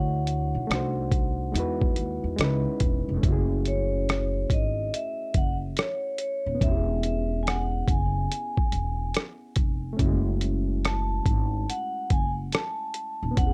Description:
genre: lo-fi hip hop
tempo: 71 BPM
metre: 4/4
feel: swing 65% on 16ths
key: unclear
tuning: A4 = 438 Hz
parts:
  - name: vibraphone with medium hard mallets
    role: melody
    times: 0.0-13.5 s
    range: C#5 to A5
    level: -34 LUFS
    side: equal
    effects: low-pass filter, analog delay
  - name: overdriven reed electric piano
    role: accompaniment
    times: 0.0-13.5 s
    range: G#3 to C#5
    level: -35 LUFS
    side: equal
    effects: low-pass filter
  - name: upright bass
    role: bass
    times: 0.0-13.5 s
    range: D#1 to E2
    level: -30 LUFS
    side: equal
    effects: none
  - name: lo-fi sampler-style drum kit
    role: drums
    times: 0.3-13.5 s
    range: hi-hat, kick drum, rim click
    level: -28 LUFS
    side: equal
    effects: overdrive
room: light reverb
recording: none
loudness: -27 LUFS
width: mono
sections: 0.0-3.2 A section; 3.2-13.5 B section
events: none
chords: 0.0 Dmaj9; 0.7 Cdim7; 1.5 Emaj9; 2.4 C#m7; 3.2 F#m9; 6.6 C#m7/E; 10.0 F#m9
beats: 0.70 1.54 2.39 | 3.23 4.08 4.92 5.77 | 6.61 7.46 8.30 9.15 | 9.99 10.84 11.68 12.53 | 13.37

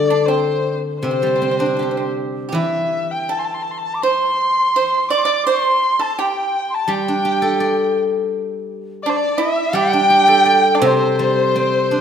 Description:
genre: chinese traditional, Chinese chamber ensemble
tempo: 83 BPM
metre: 4/4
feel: rubato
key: C gong mode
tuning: A4 = 440 Hz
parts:
  - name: mellow large dizi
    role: melody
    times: 0.0-12.0 s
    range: C5 to D6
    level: -18 LUFS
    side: right 1 dB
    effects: none
  - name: pipa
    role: second line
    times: 0.0-12.0 s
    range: C4 to D5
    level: -23 LUFS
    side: right 6 dB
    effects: none
  - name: warm erhu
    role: second line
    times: 0.0-12.0 s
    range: C5 to D6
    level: -23 LUFS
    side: left 5 dB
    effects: none
  - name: steel-string zither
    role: accompaniment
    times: 0.0-12.0 s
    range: C3 to D5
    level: -19 LUFS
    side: left 1 dB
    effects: none
room: wet scoring stage reverb, RT60 1.8 s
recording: none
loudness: -15 LUFS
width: side -8 dB against mid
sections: 0.0-12.0 A section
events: none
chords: none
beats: 0.29 1.03 1.78 | 2.54 3.30 4.03 4.75 | 5.47 6.20 6.91 7.63 | 8.34 9.05 9.76 10.47 | 11.18 11.90

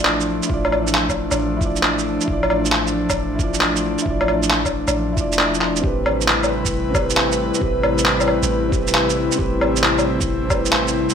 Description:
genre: future garage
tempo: 135 BPM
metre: 4/4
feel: swing 67% on 16ths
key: A minor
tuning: A4 = 441 Hz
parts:
  - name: felt-muted upright piano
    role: accompaniment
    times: 0.0-11.1 s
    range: C4 to D5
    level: -25 LUFS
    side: right 2 dB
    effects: sidechain pumping, ping-pong delay
  - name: airy breathy pad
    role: sustained chords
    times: 0.0-11.1 s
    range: C3 to B4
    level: -22 LUFS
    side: left 1 dB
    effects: chorus, sidechain pumping
  - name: soft 808-style bass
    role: bass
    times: 0.0-11.1 s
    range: E1 to A1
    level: -27 LUFS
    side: equal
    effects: sidechain pumping
  - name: electronic handclaps, shaker and woodblock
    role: drums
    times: 0.1-11.1 s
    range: none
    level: -19 LUFS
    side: equal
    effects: none
  - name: electronic kick drum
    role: drums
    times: 0.5-10.6 s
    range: none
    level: -25 LUFS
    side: equal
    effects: none
room: moderate digital room reverb, RT60 1.2 s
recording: none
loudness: -16 LUFS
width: side -7 dB against mid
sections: 0.0-5.8 A section; 5.8-11.1 B section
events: none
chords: 0.0 Dmadd9/A; 5.8 Am9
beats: 0.06 | 0.50 0.94 1.39 1.83 | 2.28 2.72 3.17 3.61 | 4.06 4.50 4.95 5.39 | 5.83 6.28 6.72 7.17 | 7.61 8.06 8.50 8.95 | 9.39 9.83 10.28 10.72

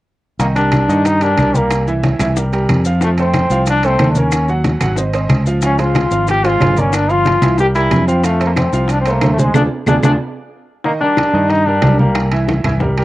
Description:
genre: latin, salsa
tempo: 184 BPM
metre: 4/4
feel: straight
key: C minor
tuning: A4 = 440 Hz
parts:
  - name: brilliant trombone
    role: melody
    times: 0.4-12.3 s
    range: Ab3 to G4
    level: -16 LUFS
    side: left 1 dB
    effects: cassette tape, plate reverb
  - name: bright grand piano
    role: accompaniment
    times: 0.4-13.0 s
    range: Eb3 to Gb5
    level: -20 LUFS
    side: right 2 dB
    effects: cassette tape, plate reverb
  - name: fingered electric bass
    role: bass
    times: 0.4-13.0 s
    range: G1 to G2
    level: -16 LUFS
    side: equal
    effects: none
  - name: bongos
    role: percussion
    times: 0.4-13.0 s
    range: none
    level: -25 LUFS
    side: left 5 dB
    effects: none
  - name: congas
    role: percussion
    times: 0.4-13.0 s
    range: none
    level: -19 LUFS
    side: equal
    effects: none
  - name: maracas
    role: percussion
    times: 0.4-10.1 s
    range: none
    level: -32 LUFS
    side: left 6 dB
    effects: none
  - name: timbales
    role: percussion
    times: 0.4-13.0 s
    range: none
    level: -24 LUFS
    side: right 5 dB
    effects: none
  - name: claves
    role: percussion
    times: 0.7-12.8 s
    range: none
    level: -26 LUFS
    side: left 6 dB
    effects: none
room: moderate booth ambience, RT60 0.2 s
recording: home recording on cassette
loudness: -12 LUFS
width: side -16 dB against mid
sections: 0.4-10.9 A section; 10.9-13.0 A section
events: band accent 9.5-10.9; drum fill 9.9-10.9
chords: 0.4 Cm9; 1.7 C7; 3.0 F; 4.3 Ebm7; 5.0 Ab; 5.6 Dbmaj7; 6.9 Gm7; 7.6 C7; 8.2 F6; 9.5 Ddim; 10.2 N.C.; 10.9 Cm9; 12.2 C7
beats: | 0.41 0.73 1.06 1.39 | 1.71 2.04 2.37 2.69 | 3.02 3.34 3.67 4.00 | 4.32 4.65 4.97 5.30 | 5.63 5.95 6.28 6.61 | 6.93 7.26 7.59 7.91 | 8.24 8.56 8.89 9.22 | 9.54 9.87 10.20 10.53 | 10.85 11.18 11.51 11.83 | 12.16 12.48 12.81

